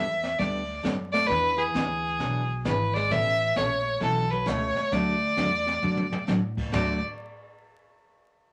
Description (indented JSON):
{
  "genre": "country, western swing",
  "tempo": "132 BPM",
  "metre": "4/4",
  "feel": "swing 65% on 8ths",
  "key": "D major",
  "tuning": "A4 = 440 Hz",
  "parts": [
    { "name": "rich fiddle", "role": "melody", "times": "0.0-7.0 s", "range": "G#4 to E5", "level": "-28 LUFS", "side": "equal", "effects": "none" },
    { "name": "archtop guitar, miked and amplified", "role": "second line", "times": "0.0-7.0 s", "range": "E3 to B3", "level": "-37 LUFS", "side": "equal", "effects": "none" },
    { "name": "picked steel-string acoustic guitar", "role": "accompaniment", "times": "0.0-7.0 s", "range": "B2 to A4", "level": "-33 LUFS", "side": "equal", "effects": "none" },
    { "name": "upright bass", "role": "bass", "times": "0.0-7.0 s", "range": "G#1 to A2", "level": "-35 LUFS", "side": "equal", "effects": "none" },
    { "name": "jazz brush drum kit", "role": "drums", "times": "0.2-6.9 s", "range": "brushed snare drum, crash cymbal, hi-hat, kick drum, ride cymbal, snare drum, toms", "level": "-36 LUFS", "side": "equal", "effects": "none" }
  ],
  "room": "moderate studio ambience, RT60 0.5 s",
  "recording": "vinyl crackle",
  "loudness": "-26 LUFS",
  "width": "mono",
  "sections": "0.0-6.7 A section; 6.7-8.5 B section",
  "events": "drum fill 5.8-6.3",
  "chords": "0.0 Gadd9; 1.3 E7; 3.1 Aadd9; 4.9 D",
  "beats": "0.39 0.84 | 1.29 1.75 2.20 2.65 | 3.10 3.55 4.01 4.46 | 4.91 5.37 5.82 6.27 | 6.72"
}